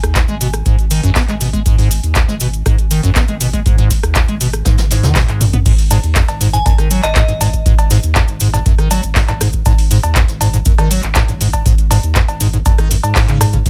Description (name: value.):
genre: acid house.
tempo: 120 BPM.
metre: 4/4.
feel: straight.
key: G# minor.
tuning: A4 = 442 Hz.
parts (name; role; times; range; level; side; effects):
saturated sub bass; bass; 0.0-13.7 s; G#1 to G#2; -21 LUFS; equal; tube saturation, sidechain pumping.
electro analog drum machine; drums; 0.0-13.7 s; cowbell, crash cymbal, handclaps, hi-hat, rim click, toms; -21 LUFS; equal; studio reverb.
cabasa; percussion; 0.0-13.7 s; none; -26 LUFS; equal; none.
warbly tape-like pad; texture; 0.0-5.7 s; G#5; -41 LUFS; equal; chorus, built-in reverb, sidechain pumping.
jazz brush drum kit; drums; 0.1-13.7 s; hi-hat, snare drum; -31 LUFS; equal; none.
electronic kick drum; drums; 0.2-13.7 s; none; -17 LUFS; equal; studio reverb.
acid bass, square; riff; 0.3-13.7 s; G#1 to B3; -19 LUFS; equal; lush chorus, cassette tape, sidechain pumping.
glassy synth bell; melody; 6.5-7.2 s; D#5 to G#5; -23 LUFS; equal; chorus, tremolo, tape echo.
room: little or no reverb.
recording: none.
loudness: -13 LUFS.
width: mono.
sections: 0.0-5.7 A section; 5.7-13.7 B section.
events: drum fill 4.7-5.7; drop 5.7-13.7.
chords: 0.0 G#5.